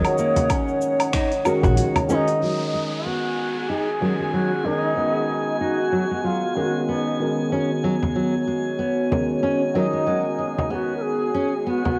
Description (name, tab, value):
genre	organic downtempo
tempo	94 BPM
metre	4/4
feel	swing 58% on 16ths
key	G# minor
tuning	A4 = 440 Hz
part	felt-muted upright piano	accompaniment	0.0-12.0 s	D#3 to A#4	-30 LUFS	equal	sidechain pumping, cassette tape, analog delay
part	warbly tape-like pad	sustained chords	0.0-12.0 s	B3 to D#6	-29 LUFS	equal	chorus, built-in reverb, phaser, sidechain pumping, cassette tape
part	nylon-string guitar	arpeggios	0.0-12.0 s	F#3 to F#4	-28 LUFS	equal	low-pass filter, cassette tape, analog delay
part	afro-pop drum kit	drums	0.0-2.4 s	finger snaps, hi-hat, shaker, woodblock	-29 LUFS	equal	overdrive, cassette tape
part	frame drum	percussion	0.4-2.1, 8.0-12.0 s	none	-27 LUFS	equal	none
part	electronic kick drum	drums	0.5-1.3 s	none	-28 LUFS	equal	overdrive, cassette tape
part	upright bass	bass	1.6-1.8 s	A#1	-22 LUFS	equal	sidechain pumping
part	breathy bass bansuri	melody	2.1-12.0 s	D#4 to A#4	-27 LUFS	equal	vintage 12-bit sampler grit, cassette tape, analog delay
part	downlifter and swell	sound effects	2.4-12.0 s	none	-40 LUFS	equal	none
part	drifting glass-harmonics texture	texture	3.0-12.0 s	G#5	-36 LUFS	equal	chorus, built-in reverb, cassette tape
room	moderate lush hall reverb, RT60 2.5 s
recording	home recording on cassette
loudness	-22 LUFS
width	mono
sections	0.0-2.4 A section; 2.4-12.0 B section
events	kick drops out 1.8-2.4; filter sweep on nylon-string guitar 2.4-12.0; filter sweep on ambient pad 2.4-12.0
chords	0.0 D#m7; 2.4 G#m7